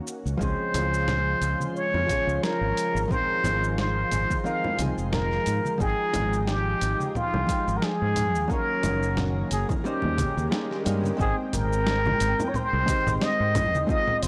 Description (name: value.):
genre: sunset chillout.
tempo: 89 BPM.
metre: 4/4.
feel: swing 56% on 16ths.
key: Ab major.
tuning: A4 = 440 Hz.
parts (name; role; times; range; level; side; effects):
lush unison pad; sustained chords; 0.0-14.3 s; Db3 to G5; -38 LUFS; equal; chorus, shimmer reverb.
dusty soul sampler-style drum kit; drums; 0.1-14.3 s; congas, hi-hat, shaker, snare drum; -34 LUFS; equal; studio reverb.
fretless electric bass; bass; 0.3-14.3 s; F1 to Ab2; -30 LUFS; equal; none.
trumpet with plunger mute; melody; 0.4-14.3 s; F4 to F5; -29 LUFS; equal; analog delay, shimmer reverb.
hollow-body jazz guitar; accompaniment; 0.4-14.3 s; F3 to G5; -34 LUFS; equal; vintage 12-bit sampler grit, shimmer reverb.
electronic kick drum; drums; 0.4-14.0 s; none; -32 LUFS; equal; studio reverb.
congas; percussion; 0.7-13.9 s; none; -35 LUFS; equal; none.
swell; sound effects; 10.2-11.2 s; none; -39 LUFS; equal; none.
room: light reverb, digital ambience.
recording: dry, gritty hardware recording, transformer saturation.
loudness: -25 LUFS.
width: mono.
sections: 0.0-11.2 A section; 11.2-14.3 B section.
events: swell 10.2-11.2.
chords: 0.4 Dbmaj7; 3.1 Ab6; 5.8 Fm9/Ab; 8.5 Gb6; 9.8 Eb7; 11.2 Abmaj7.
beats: | 0.41 1.08 1.76 2.43 | 3.11 3.78 4.46 5.13 | 5.80 6.48 7.15 7.83 | 8.50 9.17 9.85 10.52 | 11.20 11.87 12.54 13.22 | 13.89.